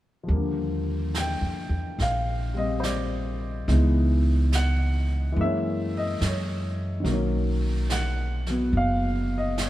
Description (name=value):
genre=jazz ballad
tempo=71 BPM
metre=4/4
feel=swing 68% on 8ths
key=unclear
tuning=A4 = 440 Hz
part: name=warm upright piano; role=accompaniment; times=0.2-9.7 s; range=D3 to G5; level=-27 LUFS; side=left 1 dB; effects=none
part: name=upright bass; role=bass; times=0.3-9.7 s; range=F#1 to Gb2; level=-25 LUFS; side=equal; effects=none
part: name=jazz brush drum kit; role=drums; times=0.3-9.7 s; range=brushed snare drum, hi-hat, snare drum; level=-36 LUFS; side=right 3 dB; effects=none
room=light reverb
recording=heard from further back in the room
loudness=-23 LUFS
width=side -14 dB against mid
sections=0.3-9.7 A section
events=none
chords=0.3 Ebmaj9; 3.7 Dbm7; 5.4 Gb9; 7.0 Bmaj9